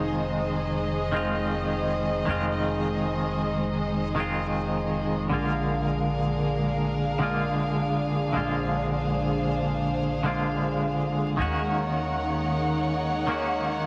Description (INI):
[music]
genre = trip hop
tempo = 79 BPM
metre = 4/4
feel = swing 59% on 16ths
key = F phrygian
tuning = A4 = 438 Hz
[part]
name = semi-hollow electric guitar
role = accompaniment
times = 0.0-13.9 s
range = D3 to Gb4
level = -29 LUFS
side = equal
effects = tremolo, low-pass filter, cassette tape, tape echo
[part]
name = rich studio violin section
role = sustained chords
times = 0.0-13.9 s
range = D4 to Gb5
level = -32 LUFS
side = equal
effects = vintage 12-bit sampler grit, cassette tape
[part]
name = upright bass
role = bass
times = 0.0-13.9 s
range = F1 to Eb2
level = -36 LUFS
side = equal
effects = tube saturation
[part]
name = backwards swelling texture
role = texture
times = 0.1-13.9 s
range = Ab3 to Ab4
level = -40 LUFS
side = equal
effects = none
[sound]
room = light reverb, small room ambience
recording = home recording on cassette, vinyl crackle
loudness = -27 LUFS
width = mono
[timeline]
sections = 0.0-13.9 A section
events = none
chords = 0.0 Fm7; 5.3 Bb7; 11.4 Ebm7